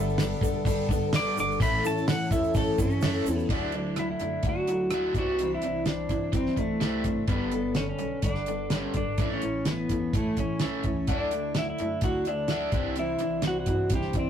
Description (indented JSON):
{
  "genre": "folk rock and heartland rock",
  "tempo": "127 BPM",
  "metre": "4/4",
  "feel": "straight",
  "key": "D major",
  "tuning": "A4 = 440 Hz",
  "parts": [
    { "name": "clear upright piano", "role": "accompaniment", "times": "0.0-2.5 s", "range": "A4 to E5", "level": "-41 LUFS", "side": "equal", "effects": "none" },
    { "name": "picked twelve-string acoustic guitar", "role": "accompaniment", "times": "0.0-14.3 s", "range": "A2 to A4", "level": "-32 LUFS", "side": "left 3 dB", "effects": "none" },
    { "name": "tonewheel organ", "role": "sustained chords", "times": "0.0-3.5 s", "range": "E3 to A4", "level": "-36 LUFS", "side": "right 1 dB", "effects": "none" },
    { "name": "overdriven electric guitar", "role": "riff", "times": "0.0-14.3 s", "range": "G2 to D4", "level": "-33 LUFS", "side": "right 1 dB", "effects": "spring reverb" },
    { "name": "upright bass", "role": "bass", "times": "0.0-14.3 s", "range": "G1 to G2", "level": "-37 LUFS", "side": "equal", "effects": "none" },
    { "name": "egg shaker", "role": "percussion", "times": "0.1-3.4 s", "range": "none", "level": "-44 LUFS", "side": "right 8 dB", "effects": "none" },
    { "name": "damped 70s drum kit", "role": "drums", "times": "0.2-14.3 s", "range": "crash cymbal, hi-hat, kick drum, rim click, snare drum", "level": "-29 LUFS", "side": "equal", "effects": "none" },
    { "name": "pedal steel guitar", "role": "melody", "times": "1.2-14.3 s", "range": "A3 to D6", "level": "-29 LUFS", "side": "equal", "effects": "none" }
  ],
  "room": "moderate booth ambience, RT60 0.2 s",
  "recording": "rough rehearsal-room recording, warm saturation",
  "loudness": "-25 LUFS",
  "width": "side -9 dB against mid",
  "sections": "0.0-3.5 A section; 3.5-14.3 B section",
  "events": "pedal steel guitar solo 0.0-3.5",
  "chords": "0.0 Gadd9; 1.6 A; 3.5 Dadd9; 5.2 Cadd9; 7.3 Gadd9; 9.2 A; 11.1 Dadd9; 12.7 Cadd9",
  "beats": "0.19 0.66 1.13 | 1.60 2.08 2.55 3.02 | 3.50 3.97 4.45 4.92 | 5.40 5.87 6.35 6.82 | 7.30 7.77 8.25 8.72 | 9.20 9.67 10.14 10.62 | 11.09 11.56 12.04 12.51 | 12.98 13.45 13.93"
}